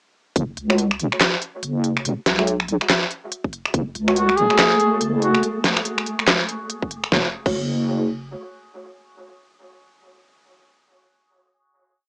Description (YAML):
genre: deep dubstep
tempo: 142 BPM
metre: 4/4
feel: swing 60% on 16ths, half-time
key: F# minor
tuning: A4 = 440 Hz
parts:
  - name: wobble bass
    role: bass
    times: 0.4-8.3 s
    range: E1 to C#2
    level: -22 LUFS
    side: equal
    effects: chorus
  - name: dubstep drum kit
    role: drums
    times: 0.4-7.6 s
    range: crash cymbal, finger snaps, handclaps, hi-hat, snare drum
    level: -19 LUFS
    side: equal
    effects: cassette tape
  - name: electronic kick drum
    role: drums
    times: 0.4-0.5, 3.4-3.8, 6.8-7.6 s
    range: none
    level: -25 LUFS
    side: equal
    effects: cassette tape
  - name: filtered dub chord stab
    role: stabs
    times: 0.7-4.1, 7.1-10.6 s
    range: G#3 to E5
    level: -27 LUFS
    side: right 1 dB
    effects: chorus, cassette tape, dub echo
  - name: flickering grainy texture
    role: texture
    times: 4.3-5.4 s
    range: A3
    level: -25 LUFS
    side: equal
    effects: built-in reverb, cassette tape
  - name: clear duduk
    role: melody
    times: 4.2-5.4 s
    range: F#4 to G#4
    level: -21 LUFS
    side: equal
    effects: vintage 12-bit sampler grit, cassette tape, dub echo
room: moderate studio reverb, RT60 0.5 s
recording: home recording on cassette, small speaker sound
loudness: -18 LUFS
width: side -33 dB against mid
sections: 0.4-7.1 drop; 7.1-10.5 final chord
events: drop 0.4-7.1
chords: 0.4 F#5; 2.0 E5; 3.7 F#m; 5.4 N.C.; 7.1 F#m